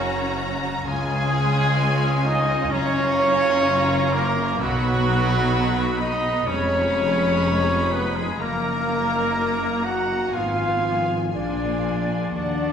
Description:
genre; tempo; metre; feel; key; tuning
classical; 63 BPM; 4/4; rubato; Eb minor; A4 = 440 Hz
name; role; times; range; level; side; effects
warm symphonic violin section; melody; 0.0-12.7 s; Gb5 to B5; -30 LUFS; left 2 dB; none
bright concert flute; second line; 0.0-12.7 s; F#4 to Gb5; -30 LUFS; left 2 dB; none
clear cor anglais; second line; 0.0-12.7 s; F#3 to Gb4; -30 LUFS; right 1 dB; none
warm symphonic violin section; second line; 0.0-12.7 s; D#4 to Gb4; -34 LUFS; equal; none
warm symphonic viola section; accompaniment; 0.0-12.7 s; Ab3 to Db4; -31 LUFS; right 1 dB; none
warm French horn section; sustained chords; 0.0-12.7 s; F#3 to Gb4; -29 LUFS; left 3 dB; none
concert harp; arpeggios; 0.0-12.7 s; F2 to F5; -32 LUFS; left 3 dB; none
bright trumpet section; stabs; 0.0-12.7 s; F#4 to Gb5; -25 LUFS; right 1 dB; none
dark symphonic double bass section; bass; 0.0-12.7 s; F1 to Eb2; -30 LUFS; right 1 dB; none
mellow tuba; bass; 0.0-12.7 s; F1 to Eb2; -30 LUFS; right 1 dB; none
warm symphonic cello section; bass; 0.0-12.7 s; Db2 to B2; -31 LUFS; right 1 dB; none
room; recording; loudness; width
wet recital hall reverb, RT60 1.4 s; recorded in a church or concert hall; -19 LUFS; side -8 dB against mid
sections
0.0-12.7 A section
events
none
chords
0.0 Gb; 0.9 Db; 2.7 Gbmaj7; 4.6 B; 6.5 Fm7b5; 8.4 Ebm/Gb; 10.3 Fdim/Ab; 11.3 Bb7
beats
| 0.86 1.79 2.71 3.65 | 4.60 5.53 6.48 7.43 | 8.40 9.36 10.33 11.31 | 12.35

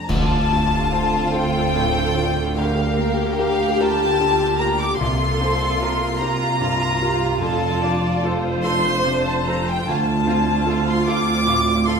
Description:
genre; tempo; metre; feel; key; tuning
cinematic, emotional film score for orchestra; 49 BPM (dotted quarters); 6/8; rubato; D minor; A4 = 439 Hz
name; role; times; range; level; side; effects
large flute ensemble; second line; 0.0-12.0 s; F5 to D6; -28 LUFS; equal; none
warm symphonic violin section; second line; 0.0-12.0 s; F5 to D6; -24 LUFS; left 3 dB; none
clear grand piano; accompaniment; 0.0-12.0 s; C2 to C5; -27 LUFS; left 1 dB; none
dark symphonic viola section; accompaniment; 0.0-12.0 s; F4 to D5; -27 LUFS; right 3 dB; none
warm symphonic violin section; melody; 0.1-12.0 s; F4 to G4; -28 LUFS; left 4 dB; none
dark French horn section; sustained chords; 0.1-12.0 s; Bb3 to G4; -27 LUFS; equal; none
dark studio cello section; bass; 0.1-12.0 s; D2 to D3; -26 LUFS; right 4 dB; none
dark symphonic double bass section; bass; 0.1-12.0 s; F1 to D2; -26 LUFS; right 2 dB; none
clash cymbals and concert bass drum; percussion; 0.1-1.7 s; none; -27 LUFS; equal; none
timpani; percussion; 0.1-1.3 s; D3; -26 LUFS; left 2 dB; none
room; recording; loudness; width
wet scoring stage reverb, RT60 1.5 s; minimal, uncompressed stereo recording; -17 LUFS; side -6 dB against mid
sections
0.1-12.0 A section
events
band accent 0.1-0.9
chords
0.1 Dm7; 2.6 Gm7/D; 5.0 C7sus4; 7.4 F6; 9.9 Dm7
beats
| 0.09 1.34 | 2.58 3.80 | 4.99 6.21 | 7.43 8.64 | 9.88 11.07

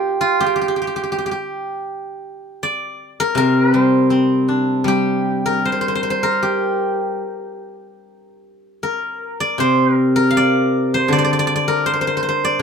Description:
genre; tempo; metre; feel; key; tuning
chinese traditional, Chinese solo plucked strings; 78 BPM; 4/4; uneven beats, rubato; G yu mode; A4 = 439 Hz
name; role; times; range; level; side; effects
steel-string zither; solo; 0.0-12.6 s; C3 to F5; -16 LUFS; equal; none
room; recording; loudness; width
light reverb; minimal, uncompressed stereo recording; -16 LUFS; side -6 dB against mid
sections
0.0-12.6 A section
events
none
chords
none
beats
0.38 1.11 | 1.85 2.59 3.35 4.10 | 4.86 5.63 6.41 7.20 | 8.01 8.81 9.59 10.35 | 11.10 11.86 12.62

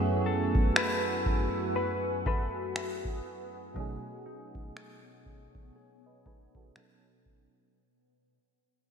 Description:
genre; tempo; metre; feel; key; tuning
contemporary R&B; 60 BPM; 4/4; swing 58% on 16ths; unclear; A4 = 443 Hz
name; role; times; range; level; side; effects
FM electric piano with tremolo; accompaniment; 0.0-7.8 s; F#2 to D#5; -34 LUFS; right 3 dB; low-pass filter
granular cloud pad; sustained chords; 0.0-7.7 s; B3 to E6; -37 LUFS; right 1 dB; built-in reverb, analog chorus, low-pass filter
direct-recorded clean electric guitar; arpeggios; 0.0-8.4 s; B2 to B4; -35 LUFS; left 4 dB; lush chorus, low-pass filter, digital delay
booming analog drum machine; drums; 0.6-7.5 s; finger snaps, kick drum; -30 LUFS; equal; vintage 12-bit sampler grit, gated reverb
room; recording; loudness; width
moderate lush hall reverb, RT60 3.2 s; bright 1980s-style digital production; -28 LUFS; side -7 dB against mid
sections
0.0-7.8 A section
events
fade-out 0.0-7.8; filter sweep 0.0-7.8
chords
0.0 F#m11; 3.8 B13; 6.8 B7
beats
0.76 1.76 2.76 | 3.76 4.76 5.76 6.76

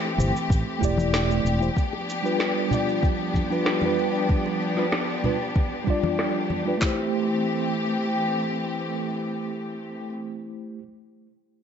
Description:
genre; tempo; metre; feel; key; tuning
sunset chillout; 95 BPM; 4/4; straight; A minor; A4 = 440 Hz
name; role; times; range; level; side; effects
rich studio string section; sustained chords; 0.0-10.1 s; E3 to G4; -28 LUFS; left 2 dB; none
mellow tine electric piano; accompaniment; 0.2-10.8 s; G3 to D5; -27 LUFS; moving between left 2 dB and right 4 dB; slow stereo tremolo, auto-pan, low-pass filter, tape echo
fingered electric bass; bass; 0.2-1.7 s; E1 to A1; -25 LUFS; equal; none
electronic cabasa and snare drum; drums; 0.2-6.8 s; none; -30 LUFS; equal; low-pass filter on snare, low-pass filter on perc, low-pass filter on room
congas and bongos; percussion; 0.2-6.6 s; none; -30 LUFS; left 2 dB; none
smooth R&B drum kit; drums; 0.5-7.0 s; handclaps, kick drum, snare drum; -24 LUFS; equal; none
room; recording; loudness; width
moderate lush hall reverb, RT60 1.8 s; nothing above 7.8 kHz; -22 LUFS; side -8 dB against mid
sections
0.0-6.8 A section; 6.8-9.3 B section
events
filter sweep on drum 0.0-6.8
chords
0.0 Am7; 1.8 G7; 6.8 Am7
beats
0.50 1.13 | 1.76 2.39 3.02 3.66 | 4.29 4.92 5.55 6.18 | 6.82 7.45 8.08 8.71

